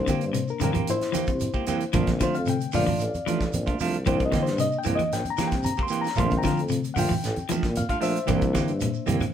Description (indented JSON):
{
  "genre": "afrobeat",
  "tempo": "113 BPM",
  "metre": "4/4",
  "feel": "straight",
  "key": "C mixolydian",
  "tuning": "A4 = 440 Hz",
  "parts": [
    { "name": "bright reed electric piano", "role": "accompaniment", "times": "0.0-9.3 s", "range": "D3 to C6", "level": "-28 LUFS", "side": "left 4 dB", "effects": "none" },
    { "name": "warm tuba", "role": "bass", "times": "0.0-9.2 s", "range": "A1 to C3", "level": "-30 LUFS", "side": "equal", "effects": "none" },
    { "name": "clean electric guitar", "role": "arpeggios", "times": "0.1-9.3 s", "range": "Bb2 to E3", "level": "-29 LUFS", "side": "left 3 dB", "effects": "none" },
    { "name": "semi-hollow electric guitar", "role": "stabs", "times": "0.1-9.2 s", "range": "E3 to G4", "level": "-28 LUFS", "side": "right 6 dB", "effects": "none" },
    { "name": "tight funk drum kit", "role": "drums", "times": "0.1-9.3 s", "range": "hi-hat, kick drum, snare drum", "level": "-31 LUFS", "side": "equal", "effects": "none" },
    { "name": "congas", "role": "percussion", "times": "0.1-9.3 s", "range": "none", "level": "-31 LUFS", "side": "right 2 dB", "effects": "none" },
    { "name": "shekere", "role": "percussion", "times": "0.1-9.3 s", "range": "none", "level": "-36 LUFS", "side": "right 4 dB", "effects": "none" }
  ],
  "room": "moderate studio reverb, RT60 0.5 s",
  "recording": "band playing live in one room",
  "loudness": "-22 LUFS",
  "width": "side -9 dB against mid",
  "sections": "0.0-9.3 A section",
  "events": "reed electric piano solo 0.0-9.3",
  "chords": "0.0 C7; 1.9 Bbmaj7; 4.1 C7; 6.2 Bbmaj7; 8.3 C7"
}